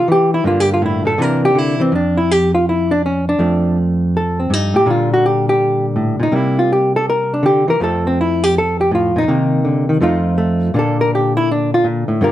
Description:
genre	solo jazz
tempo	163 BPM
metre	4/4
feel	swing 66% on 8ths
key	F major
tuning	A4 = 440 Hz
part	hollow-body jazz guitar	solo	0.0-12.3 s	F2 to Bb4	-13 LUFS	equal	none
room	light reverb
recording	minimal, uncompressed stereo recording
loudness	-13 LUFS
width	side -13 dB against mid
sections	0.0-1.9 A section; 1.9-12.3 A section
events	hollow-body jazz guitar solo 0.0-12.3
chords	0.4 Gm; 1.2 C9; 1.9 N.C.; 3.4 F; 4.9 Bb6; 6.3 C7; 7.8 F; 9.3 Cm7; 10.0 F7; 10.7 Bbmaj7

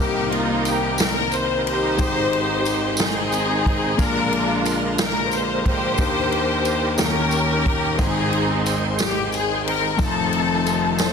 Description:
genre	slow gospel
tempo	60 BPM (dotted quarters)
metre	6/8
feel	straight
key	unclear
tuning	A4 = 440 Hz
part	rich studio string section	melody	0.0-11.1 s	Bb3 to C5	-22 LUFS	left 2 dB	none
part	clear concert grand piano	accompaniment	0.0-11.1 s	F1 to G5	-24 LUFS	left 3 dB	none
part	bright tonewheel organ	sustained chords	0.0-11.1 s	D3 to G5	-27 LUFS	right 5 dB	slow rotary speaker, overdrive, chorus vibrato
part	swinging big-band drum kit	drums	0.3-11.1 s	kick drum, ride cymbal, snare drum	-25 LUFS	equal	none
part	tambourine	percussion	0.7-11.1 s	none	-31 LUFS	right 7 dB	none
room	light reverb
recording	dense, heavily limited modern master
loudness	-18 LUFS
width	side -6 dB against mid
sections	0.0-11.1 A section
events	none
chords	0.0 Cm7; 2.0 Abmaj7; 4.0 Bb7; 6.0 Ebmaj7; 7.0 Eb7; 8.0 Abmaj7; 10.0 F7

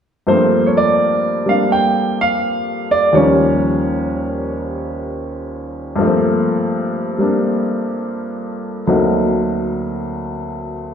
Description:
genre	solo jazz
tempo	84 BPM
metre	4/4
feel	swing 67% on 8ths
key	G minor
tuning	A4 = 441 Hz
part	warm baby grand piano	solo	0.3-10.9 s	D2 to G5	-15 LUFS	equal	none
room	wet recital hall reverb, RT60 1.4 s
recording	recorded in a church or concert hall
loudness	-15 LUFS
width	side -8 dB against mid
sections	0.3-10.9 A section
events	none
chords	0.3 Gm11; 3.1 Eb9; 6.0 Gm11; 8.9 D7b9b13

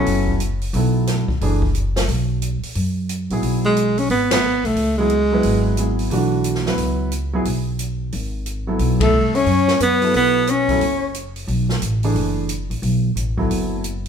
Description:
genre	modal jazz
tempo	179 BPM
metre	4/4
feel	swing 64% on 8ths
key	B dorian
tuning	A4 = 439 Hz
part	warm tenor saxophone	melody	0.0-0.4, 3.7-5.9, 9.0-11.2 s	G#3 to C#4	-17 LUFS	equal	none
part	warm concert grand piano	accompaniment	0.0-13.8 s	E3 to B4	-23 LUFS	right 1 dB	none
part	upright bass	bass	0.0-14.1 s	F#1 to F#2	-21 LUFS	equal	none
part	open jazz drum kit	drums	0.1-14.1 s	hi-hat, kick drum, ride cymbal, snare drum	-26 LUFS	equal	none
part	warm alto saxophone	second line	9.0-11.2 s	A4 to C#5	-24 LUFS	left 1 dB	none
room	moderate large studio reverb, RT60 1.1 s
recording	band playing live in one room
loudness	-17 LUFS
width	side -7 dB against mid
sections	0.0-14.1 A section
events	band accent 4.3, 9.0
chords	0.0 B7sus4; 3.4 C#m; 8.8 B9sus4

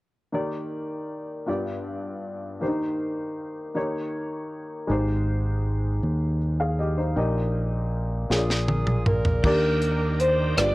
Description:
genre	slow gospel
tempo	53 BPM (dotted quarters)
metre	6/8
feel	straight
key	Eb major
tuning	A4 = 438 Hz
part	warm upright piano	accompaniment	0.3-10.7 s	G2 to F5	-28 LUFS	left 1 dB	none
part	fingered electric bass	bass	4.9-10.7 s	G1 to Eb2	-25 LUFS	equal	none
part	folk marimba with soft mallets	melody	8.3-10.7 s	D4 to D5	-27 LUFS	equal	none
part	warm alto saxophone	melody	8.3-10.7 s	Ab4 to D5	-29 LUFS	right 2 dB	none
part	tight funk drum kit	drums	8.3-10.7 s	crash cymbal, hi-hat, kick drum, rim click, snare drum, toms	-25 LUFS	equal	none
part	bright tonewheel organ	sustained chords	9.4-10.7 s	Eb3 to G4	-33 LUFS	right 2 dB	fast rotary speaker, chorus vibrato
room	light reverb, studio reverb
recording	worn, warbling old tape, cassette tape, warbly pitch drift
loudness	-23 LUFS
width	side -19 dB against mid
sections	0.3-9.4 A section; 9.4-10.7 B section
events	drum fill 8.3-9.4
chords	0.3 Ebmaj7; 1.5 G7; 2.6 Cm7/Eb; 3.8 Eb7; 4.9 Abmaj7; 7.2 Eb/Bb; 8.3 Bb7; 9.4 Ebmaj7

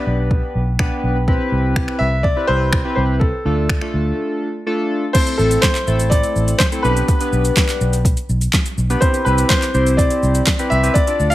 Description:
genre	dance-pop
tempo	124 BPM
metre	4/4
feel	straight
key	unclear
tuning	A4 = 438 Hz
part	clear concert grand piano	melody	0.0-11.3 s	A4 to F5	-20 LUFS	equal	digital delay
part	chorused polysynth	accompaniment	0.0-11.3 s	A3 to D5	-21 LUFS	left 1 dB	phaser
part	vintage muted fingered electric bass	bass	0.1-11.3 s	A1 to D2	-18 LUFS	equal	sidechain pumping
part	smooth R&B drum kit	drums	0.3-11.3 s	crash cymbal, finger snaps, handclaps, hi-hat, kick drum, shaker, snare drum	-18 LUFS	equal	overdrive
room	light reverb, digital ambience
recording	none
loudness	-14 LUFS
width	side -15 dB against mid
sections	0.0-5.1 A section; 5.1-11.3 B section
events	break 4.2-5.1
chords	0.0 G/B; 1.3 Cmaj7; 3.2 Dm; 5.1 Am; 6.8 G/B; 9.0 Cmaj7

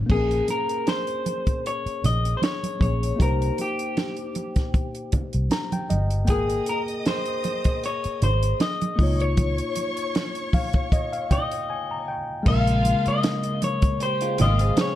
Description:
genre	lush 1970s-style soul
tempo	78 BPM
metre	4/4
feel	swing 54% on 16ths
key	Bb dorian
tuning	A4 = 438 Hz
part	tine electric piano	accompaniment	0.0-15.0 s	Db3 to Bb5	-29 LUFS	left 2 dB	none
part	electric guitar through a small old amp	melody	0.1-15.0 s	G4 to F5	-27 LUFS	left 2 dB	none
part	vintage muted fingered electric bass	bass	0.1-14.7 s	G1 to Db2	-23 LUFS	equal	none
part	compact cocktail drum kit	drums	0.1-15.0 s	crash cymbal, hi-hat, kick drum, snare drum	-25 LUFS	equal	none
part	congas	percussion	0.1-15.0 s	none	-29 LUFS	right 3 dB	none
part	warm studio violin section	second line	6.3-14.7 s	F4 to Eb6	-35 LUFS	left 1 dB	none
part	electric guitar through a small old amp	riff	14.2-15.0 s	Ab3 to Ab4	-29 LUFS	right 4 dB	ensemble chorus
room	light reverb, small room ambience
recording	dark, warm production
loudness	-21 LUFS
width	side -13 dB against mid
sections	0.1-12.5 A section; 12.5-15.0 B section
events	tine electric piano fill 5.1-6.3, 10.1-12.5; break 11.7-12.5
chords	0.1 Bbm9; 3.2 Cm7; 6.3 Abmaj9; 9.0 Db69; 12.5 Bbm9

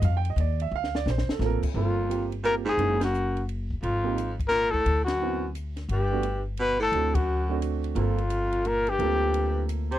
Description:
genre	jazz, small-group swing and bop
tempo	174 BPM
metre	3/4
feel	swing 65% on 8ths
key	G minor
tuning	A4 = 440 Hz
part	warm grand piano	accompaniment	0.0-10.0 s	A3 to G5	-31 LUFS	right 14 dB	none
part	upright bass	bass	0.0-10.0 s	F#1 to F2	-28 LUFS	left 1 dB	none
part	compact cocktail drum kit	drums	0.0-10.0 s	crash cymbal, hi-hat, kick drum, ride cymbal, snare drum	-32 LUFS	left 1 dB	none
part	clear baritone saxophone	second line	1.7-10.0 s	F2 to C3	-31 LUFS	right 3 dB	none
part	breathy trumpet	melody	1.8-10.0 s	F4 to C5	-27 LUFS	left 3 dB	none
room	little or no reverb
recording	dry, close 1970s-style studio recording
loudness	-24 LUFS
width	side -13 dB against mid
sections	0.0-1.7 A section; 1.7-10.0 B section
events	drum fill 0.7-1.4; band accent 3.0, 5.0, 7.1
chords	0.0 Gm11 (rootless); 1.7 Gm11; 2.8 F#9; 3.8 Absus2; 4.9 D13; 5.9 Gadd9; 6.9 D7; 8.0 Gm11

